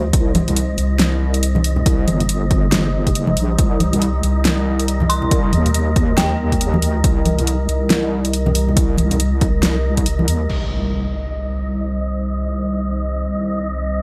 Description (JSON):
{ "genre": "deep dubstep", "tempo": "139 BPM", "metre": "4/4", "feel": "swing 60% on 16ths, half-time", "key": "C minor", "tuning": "A4 = 441 Hz", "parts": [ { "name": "deep dark ambient pad", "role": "sustained chords", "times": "0.0-14.0 s", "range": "G3 to C5", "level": "-28 LUFS", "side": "equal", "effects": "chorus, built-in reverb" }, { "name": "deep soft wobble bass", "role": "bass", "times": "0.0-14.0 s", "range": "G1 to Eb2", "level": "-21 LUFS", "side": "equal", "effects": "chorus, tube saturation" }, { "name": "wind-like tuned noise texture", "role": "texture", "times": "0.0-14.0 s", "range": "Eb5", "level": "-32 LUFS", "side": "equal", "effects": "built-in reverb" }, { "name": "deep house drum kit", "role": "drums", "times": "0.1-10.6 s", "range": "crash cymbal, hi-hat, snare drum", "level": "-23 LUFS", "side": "equal", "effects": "overdrive, low-pass filter on hats, studio reverb, low-pass filter on cymbals, low-pass filter on snare" }, { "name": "electronic kick drum", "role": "drums", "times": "0.1-10.0 s", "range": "none", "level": "-20 LUFS", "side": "equal", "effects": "overdrive, studio reverb" }, { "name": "congas", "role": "percussion", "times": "0.3-10.3 s", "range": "none", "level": "-25 LUFS", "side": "equal", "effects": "none" }, { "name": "dark detuned synth bell", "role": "melody", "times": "5.1-6.5 s", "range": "G5 to C6", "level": "-28 LUFS", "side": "equal", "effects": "chorus, dub echo" }, { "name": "impact", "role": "sound effects", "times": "10.5-12.2 s", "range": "none", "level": "-29 LUFS", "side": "equal", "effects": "none" } ], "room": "light reverb, digital ambience", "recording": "none", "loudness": "-18 LUFS", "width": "mono", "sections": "0.0-10.5 A section; 10.5-14.0 B section", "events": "drop 0.0-10.5; impact 10.5-12.2", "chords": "0.0 Cm", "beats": "| 0.13 0.56 1.00 1.43 | 1.86 2.29 2.72 3.15 | 3.59 4.02 4.45 4.88 | 5.31 5.75 6.18 6.61 | 7.04 7.47 7.90 8.34 | 8.77 9.20 9.63 10.06 | 10.49 10.93 11.36 11.79 | 12.22 12.65 13.08 13.52 | 13.95" }